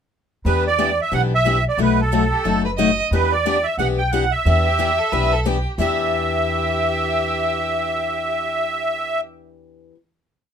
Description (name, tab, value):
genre	acoustic string swing (jazz manouche)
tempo	180 BPM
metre	4/4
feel	swing 61% on 8ths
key	E minor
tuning	A4 = 440 Hz
part	upright bass	bass	0.4-9.9 s	F#1 to E2	-23 LUFS	equal	none
part	musette accordion	melody	0.5-9.2 s	A4 to G5	-20 LUFS	right 2 dB	none
part	picked steel-string acoustic guitar	accompaniment	0.5-10.0 s	B2 to G4	-23 LUFS	left 7 dB	none
part	clear violin	second line	2.3-9.2 s	G4 to D#5	-27 LUFS	right 3 dB	none
room	light reverb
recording	minimal, uncompressed stereo recording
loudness	-17 LUFS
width	side -8 dB against mid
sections	0.5-5.8 A section; 5.8-8.4 final chord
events	none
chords	0.5 Em7; 1.8 B7; 3.1 Em7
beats	| 0.45 0.79 1.12 1.45 | 1.78 2.12 2.45 2.78 | 3.12 3.45 3.78 4.12 | 4.45 4.78 5.11 5.45 | 5.78 6.11 6.45 6.78 | 7.11 7.44 7.78 8.11